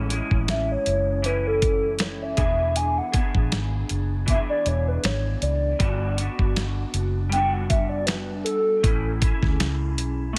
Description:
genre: indie pop, bedroom pop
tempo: 79 BPM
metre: 4/4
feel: swing 55% on 16ths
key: A major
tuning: A4 = 440 Hz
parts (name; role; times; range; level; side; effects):
- electric guitar through a small old amp; accompaniment; 0.0-10.4 s; E3 to G#4; -33 LUFS; equal; ensemble chorus, vibrato effect
- vintage muted fingered electric bass; bass; 0.0-10.4 s; E1 to D2; -28 LUFS; equal; none
- dusty soul sampler-style drum kit; drums; 0.1-10.4 s; hi-hat, kick drum, snare drum; -26 LUFS; equal; none
- hollow clarinet-like synth lead; melody; 0.5-9.2 s; A4 to G#5; -28 LUFS; equal; lush chorus, delay
room: digital ambience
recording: none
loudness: -23 LUFS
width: mono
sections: 0.0-10.4 A section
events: soft synth lead solo 0.0-10.4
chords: 0.0 Amaj7; 2.4 E7; 5.8 Gmaj7; 8.8 Amaj7

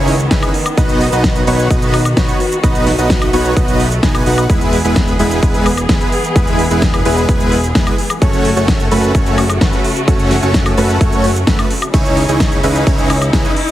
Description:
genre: EDM, festival progressive house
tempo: 129 BPM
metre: 4/4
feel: straight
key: unclear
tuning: A4 = 438 Hz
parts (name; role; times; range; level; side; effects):
- warm studio string section; sustained chords; 0.0-13.7 s; C#3 to G#4; -21 LUFS; left 1 dB; sidechain pumping
- dense compressed supersaw; riff; 0.0-13.5 s; G#3 to G#5; -16 LUFS; right 1 dB; sidechain pumping, digital delay
- fat analog bass; bass; 0.0-13.5 s; E1 to C#2; -18 LUFS; equal; tube saturation, sidechain pumping
- big-room dance drum kit; drums; 0.1-13.7 s; cabasa, hi-hat, ride cymbal, snare drum, woodblock; -20 LUFS; equal; none
- electronic kick drum; drums; 0.3-13.4 s; none; -15 LUFS; equal; none
room: light reverb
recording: heavily compressed radio sound, multiband compression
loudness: -11 LUFS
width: side -13 dB against mid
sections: 0.0-13.7 A section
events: none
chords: 0.0 C#madd9; 0.8 B; 4.5 E; 8.2 F#m; 11.9 C#madd9

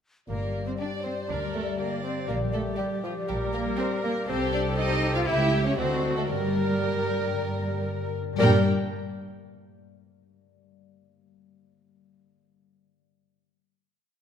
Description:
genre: cinematic, playful, whimsical film cue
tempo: 118 BPM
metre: 4/4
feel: uneven beats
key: G minor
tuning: A4 = 438 Hz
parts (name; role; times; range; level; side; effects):
- mellow clarinet; second line; 0.3-8.6 s; F#4 to Bb4; -37 LUFS; equal; none
- mellow hollow concert flute; second line; 0.3-8.7 s; C5 to E5; -37 LUFS; left 2 dB; none
- warm chamber violin section; second line; 0.3-8.7 s; F4 to G5; -35 LUFS; equal; none
- warm bassoon; accompaniment; 0.3-8.6 s; F3 to F4; -35 LUFS; right 2 dB; none
- warm French horn section; sustained chords; 0.3-8.6 s; F#4 to Eb5; -37 LUFS; left 3 dB; none
- concert harp; arpeggios; 0.3-10.5 s; G2 to C5; -34 LUFS; left 8 dB; none
- dark chamber cello section; bass; 0.3-8.7 s; Bb2 to F4; -31 LUFS; right 1 dB; none
- dark studio double bass section; bass; 0.3-8.7 s; G1 to G2; -30 LUFS; right 3 dB; none
- warm chamber violin section; melody; 0.8-8.7 s; F#4 to Bb4; -32 LUFS; left 1 dB; none
- dark chamber viola section; accompaniment; 1.3-8.7 s; D4 to D5; -35 LUFS; right 2 dB; none
room: moderate scoring stage reverb, RT60 1.8 s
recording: none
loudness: -24 LUFS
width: side -8 dB against mid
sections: 0.3-8.4 A section; 8.4-10.5 final chord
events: none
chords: 0.3 Gm; 2.3 Gm/Bb; 4.3 Cm; 5.3 A7/C#; 5.8 D7b9; 6.3 Gm

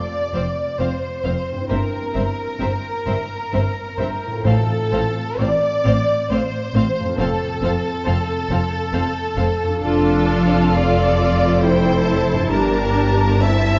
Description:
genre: classical, slow romantic movement for symphony orchestra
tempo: 67 BPM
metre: 3/4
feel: uneven beats, rubato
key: F major, D minor from 9.8 s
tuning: A4 = 440 Hz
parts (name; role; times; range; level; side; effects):
- rich symphonic violin section; second line; 0.0-13.8 s; A4 to E5; -25 LUFS; equal; none
- concert harp; arpeggios; 0.0-13.8 s; F2 to C5; -30 LUFS; equal; none
- rich symphonic violin section; melody; 0.3-13.8 s; E5 to A5; -34 LUFS; equal; none
- rich symphonic viola section; accompaniment; 0.3-13.8 s; C4 to C5; -27 LUFS; equal; none
- warm studio cello section; bass; 0.3-13.8 s; F2 to A2; -26 LUFS; equal; none
- rich symphonic double bass section; bass; 0.4-13.8 s; F1 to A1; -26 LUFS; equal; none
- timpani; percussion; 4.4-5.8 s; A2; -24 LUFS; equal; none
room: moderate concert hall reverb, RT60 2.0 s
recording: dark, warm production, nothing above 7.5 kHz, faint mains hum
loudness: -19 LUFS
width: mono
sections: 0.0-13.8 A section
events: none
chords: 0.0 F; 1.7 C7/G; 4.4 F/A; 7.2 F; 9.8 Dm/F; 12.5 Em7b5/G

